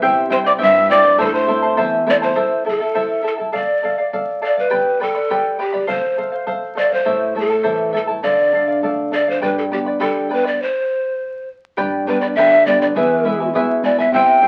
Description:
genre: andean folk, Andean ensemble.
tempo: 102 BPM.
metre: 2/4.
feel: straight.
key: A minor.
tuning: A4 = 440 Hz.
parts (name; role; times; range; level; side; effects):
charango; accompaniment; 0.0-14.5 s; E4 to B5; -22 LUFS; equal; none.
flamenco guitar; accompaniment; 0.0-2.3, 7.1-14.5 s; E2 to E4; -26 LUFS; equal; none.
bombo; percussion; 0.0-14.3 s; none; -37 LUFS; equal; none.
breathy large pan pipes; melody; 0.3-14.5 s; G4 to G5; -19 LUFS; equal; none.
breathy hollow quena; second line; 0.3-1.8 s; A5 to E6; -20 LUFS; equal; none.
room: moderate studio ambience, RT60 0.5 s.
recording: very old 78 rpm record, vinyl crackle.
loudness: -17 LUFS.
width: mono.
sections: 0.0-2.4 A section; 2.4-11.8 B section; 11.8-14.5 A section.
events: stop 10.6-11.8.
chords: 0.0 C; 1.2 Am; 3.5 Dm; 4.7 G; 5.9 F; 7.1 Am; 8.2 Dm; 9.4 G; 10.6 N.C.; 11.8 G; 12.9 E.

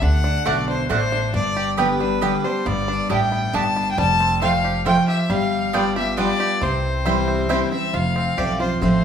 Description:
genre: bluegrass.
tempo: 136 BPM.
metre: 3/4.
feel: straight.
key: unclear.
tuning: A4 = 440 Hz.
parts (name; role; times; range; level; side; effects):
clear fiddle; melody; 0.0-9.0 s; B4 to A5; -23 LUFS; left 2 dB; none.
picked steel-string acoustic guitar; accompaniment; 0.0-9.0 s; F2 to G4; -23 LUFS; left 1 dB; none.
bluegrass banjo; arpeggios; 0.0-9.0 s; G3 to G4; -28 LUFS; right 6 dB; none.
upright bass; bass; 0.0-9.0 s; F1 to D2; -25 LUFS; equal; none.
mandolin; stabs; 0.5-7.6 s; A3 to A5; -25 LUFS; right 6 dB; none.
room: moderate large studio reverb, RT60 1.2 s.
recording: band playing live in one room.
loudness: -18 LUFS.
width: side -8 dB against mid.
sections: 0.0-7.9 A section; 7.9-9.0 A section.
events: none.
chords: 0.0 D; 1.3 G; 2.7 Gadd9; 4.0 Fadd9; 5.3 G7; 6.6 C; 7.9 F.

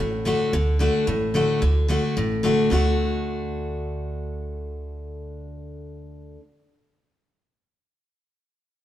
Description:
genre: bluegrass.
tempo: 220 BPM.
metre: 4/4.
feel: straight.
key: D major.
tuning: A4 = 438 Hz.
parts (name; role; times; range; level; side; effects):
picked steel-string acoustic guitar; accompaniment; 0.0-6.4 s; A2 to F#4; -24 LUFS; left 1 dB; none.
upright bass; bass; 0.0-6.4 s; A1 to D2; -26 LUFS; right 1 dB; none.
room: wet stone room reverb, RT60 1.2 s.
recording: band playing live in one room.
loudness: -20 LUFS.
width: side -12 dB against mid.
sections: 0.0-1.6 A section; 1.6-2.7 B section; 2.7-4.9 C section.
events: none.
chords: 0.0 D.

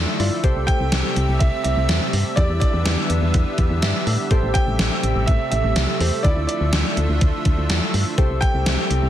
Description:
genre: synth-pop.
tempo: 124 BPM.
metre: 4/4.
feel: straight.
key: A minor.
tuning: A4 = 440 Hz.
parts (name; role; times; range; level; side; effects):
warm analog keys; accompaniment; 0.0-9.1 s; E4 to E5; -29 LUFS; equal; chorus.
lush unison pad; sustained chords; 0.0-9.1 s; C3 to E5; -26 LUFS; right 1 dB; chorus.
solid FM bass; bass; 0.0-9.1 s; A1 to A2; -21 LUFS; equal; none.
gated 80s digital drum machine; drums; 0.2-9.0 s; hi-hat, kick drum, snare drum; -20 LUFS; equal; gated reverb, gated reverb snare.
warm concert grand piano; melody; 0.7-9.1 s; D5 to G5; -26 LUFS; right 2 dB; digital delay.
room: light reverb.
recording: dense, heavily limited modern master.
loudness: -17 LUFS.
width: side -11 dB against mid.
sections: 0.0-9.1 A section.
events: synth keys fill 3.6-4.3.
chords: 0.4 Am7/C; 2.4 Em7; 4.3 Am7; 6.2 Dmadd9; 8.2 Am7/C.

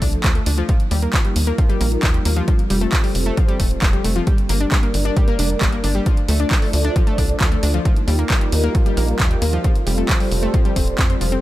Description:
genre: uplifting trance.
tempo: 134 BPM.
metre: 4/4.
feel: straight.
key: unclear.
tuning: A4 = 440 Hz.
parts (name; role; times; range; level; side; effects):
filtered supersaw swell; sustained chords; 0.0-11.4 s; F3 to D5; -25 LUFS; right 1 dB; sidechain pumping, low-pass filter.
analog pluck; arpeggios; 0.0-11.4 s; F3 to D4; -25 LUFS; left 3 dB; chorus, sidechain pumping, digital delay.
tight sequencer bass; bass; 0.0-11.4 s; Eb1 to F2; -20 LUFS; equal; sidechain pumping.
big-room dance drum kit; drums; 0.0-11.4 s; handclaps, hi-hat; -25 LUFS; right 1 dB; none.
electronic kick drum; drums; 0.0-11.1 s; none; -17 LUFS; equal; none.
room: digital ambience.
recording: none.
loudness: -15 LUFS.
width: side -15 dB against mid.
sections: 0.0-11.4 A section.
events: filter sweep on supersaw synth 0.0-11.4.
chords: 0.0 Dm; 0.7 Ebadd9; 2.5 Fadd9; 4.3 Gm; 6.1 Dm; 7.9 Ebadd9; 9.6 Fadd9.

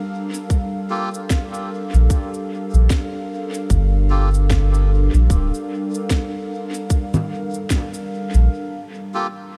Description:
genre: ambient dub.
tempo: 75 BPM.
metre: 4/4.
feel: swing 60% on 16ths.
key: G minor.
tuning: A4 = 440 Hz.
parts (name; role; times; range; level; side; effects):
warbly tape-like pad; sustained chords; 0.0-8.5 s; G3 to F5; -29 LUFS; equal; chorus, built-in reverb, phaser.
electronic cabasa, snare drum and congas; drums; 0.3-8.5 s; none; -30 LUFS; equal; overdrive, dub echo.
electronic kick drum; drums; 0.5-7.9 s; none; -21 LUFS; equal; overdrive.
melodica; stabs; 0.9-4.3, 9.1-9.3 s; Bb3 to A4; -32 LUFS; equal; dub echo.
soft dub sub bass; bass; 1.9-8.5 s; D1 to Bb1; -16 LUFS; equal; none.
room: light reverb.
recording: none.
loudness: -20 LUFS.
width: mono.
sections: 0.0-9.6 A section.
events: break 8.5-9.6.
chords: 0.0 Gm9.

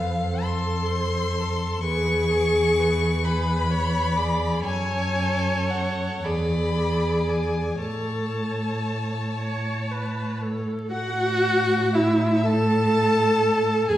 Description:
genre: classical, slow romantic movement for string quartet.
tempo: 36-45 BPM (dotted quarters).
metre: 6/8.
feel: rubato.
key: unclear.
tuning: A4 = 442 Hz.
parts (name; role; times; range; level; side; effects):
warm violin; melody; 0.0-14.0 s; E5 to C#6; -29 LUFS; left 4 dB; none.
warm violin; second line; 0.0-14.0 s; G#4 to A5; -31 LUFS; left 2 dB; none.
warm viola; accompaniment; 0.0-14.0 s; E4 to D5; -25 LUFS; equal; none.
warm cello; bass; 0.0-14.0 s; E2 to A2; -25 LUFS; right 1 dB; none.
room: wet recital hall reverb, RT60 1.4 s.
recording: heard from further back in the room, vinyl crackle.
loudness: -21 LUFS.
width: side -13 dB against mid.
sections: 0.0-10.9 A section; 10.9-14.0 A section.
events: none.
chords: 0.0 F; 1.9 E; 4.6 F#m; 6.2 E7; 7.8 A; 10.9 F#m7/A.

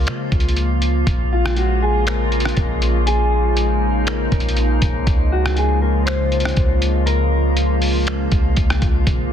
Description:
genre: hip hop, atmospheric cloud-rap.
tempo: 120 BPM.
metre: 4/4.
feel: half-time.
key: Db major.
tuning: A4 = 441 Hz.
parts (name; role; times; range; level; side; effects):
mellow electric guitar; melody; 0.0-8.5 s; F4 to C5; -24 LUFS; left 2 dB; low-pass filter, digital delay.
glassy FM pad; sustained chords; 0.0-9.3 s; Db3 to F4; -22 LUFS; left 1 dB; ensemble chorus, built-in reverb, sidechain pumping.
clean 808-style bass; bass; 0.0-9.3 s; Bb1 to Db3; -19 LUFS; equal; none.
drifting glass-harmonics texture; texture; 0.0-9.3 s; Bb3 to C5; -33 LUFS; left 2 dB; chorus, built-in reverb.
trip hop sampler-style drum kit; drums; 0.1-9.2 s; finger snaps, hi-hat, kick drum, rim click; -21 LUFS; equal; soft clipping on snare.
room: little or no reverb.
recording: dense, heavily limited modern master.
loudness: -15 LUFS.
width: side -9 dB against mid.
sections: 0.0-1.1 A section; 1.1-9.3 B section.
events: none.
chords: 0.0 Db6; 1.1 Bbm7; 5.1 Db6.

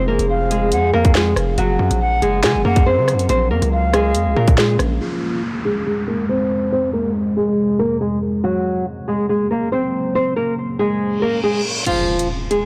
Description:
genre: hip hop, drill.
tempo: 140 BPM.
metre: 4/4.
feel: half-time.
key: F phrygian.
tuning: A4 = 437 Hz.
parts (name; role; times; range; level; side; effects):
nylon-string guitar; melody; 0.0-12.7 s; F3 to C5; -21 LUFS; equal; low-pass filter, digital delay.
deep dark ambient pad; sustained chords; 0.0-11.8 s; F2 to Bb4; -27 LUFS; equal; chorus, built-in reverb, low-pass filter.
distorted 808-style bass; bass; 0.0-5.0 s; F1 to Db3; -22 LUFS; equal; distortion.
drill drum kit; drums; 0.2-4.9, 11.9-12.6 s; crash cymbal, handclaps, hi-hat, kick drum, rim click, snare drum; -21 LUFS; equal; none.
silver concert flute; second line; 0.3-4.5 s; F5 to Ab5; -26 LUFS; equal; digital delay.
downlifter, reverse cymbal and impact; sound effects; 5.0-12.7 s; none; -30 LUFS; equal; none.
room: light reverb, digital ambience.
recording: blown-out, overdriven recording, overdrive.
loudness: -18 LUFS.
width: mono.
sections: 0.0-5.0 A section; 5.0-11.9 B section.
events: filter sweep 5.0-11.9; reverse cymbal 11.2-11.9; kick muted 11.9-12.7; impact 11.9-12.7.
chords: 0.0 Fm; 1.6 Gb; 3.3 Bbm7; 5.0 Fm; 8.4 Gb; 10.1 Bbm7; 11.9 Fm.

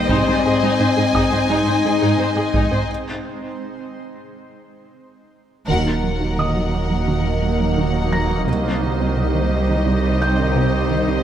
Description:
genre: cinematic, hybrid orchestral and electronic film score.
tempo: 86 BPM.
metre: 4/4.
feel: straight.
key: Eb dorian.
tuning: A4 = 440 Hz.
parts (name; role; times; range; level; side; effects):
warm symphonic violin section; second line; 0.0-11.2 s; Bb4 to Ab5; -24 LUFS; left 4 dB; none.
rich symphonic viola section; accompaniment; 0.0-11.2 s; Eb4 to C5; -28 LUFS; right 1 dB; low-pass filter.
granular cloud pad; sustained chords; 0.0-11.2 s; Gb3 to Eb5; -25 LUFS; right 1 dB; built-in reverb, low-pass filter.
mellow French horn section; sustained chords; 0.0-11.2 s; Gb3 to Eb4; -25 LUFS; left 5 dB; low-pass filter.
resonant blip pluck; arpeggios; 0.0-11.2 s; C3 to Ab4; -26 LUFS; right 3 dB; chorus, low-pass filter, tape echo.
felt-muted upright piano; texture; 0.0-11.2 s; Eb5 to Bb6; -30 LUFS; equal; tape echo.
rich symphonic cello section; bass; 0.1-11.2 s; C2 to Ab2; -24 LUFS; right 3 dB; none.
taiko ensemble; drums; 0.1-7.0 s; none; -26 LUFS; right 1 dB; none.
rich symphonic double bass section; bass; 5.7-11.2 s; C2 to Eb2; -25 LUFS; right 4 dB; none.
saturated sub bass; bass; 5.7-11.2 s; Eb1 to C2; -24 LUFS; equal; none.
room: moderate concert hall reverb, RT60 1.7 s.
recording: none.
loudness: -16 LUFS.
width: side -10 dB against mid.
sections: 0.0-5.7 A section; 5.7-11.2 B section.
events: break 2.9-5.7; drum fill 5.0-5.7; band accent 5.7-6.4; filter sweep 5.7-11.2.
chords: 0.1 Ab; 2.9 N.C.; 5.7 Ebm; 8.5 Cm.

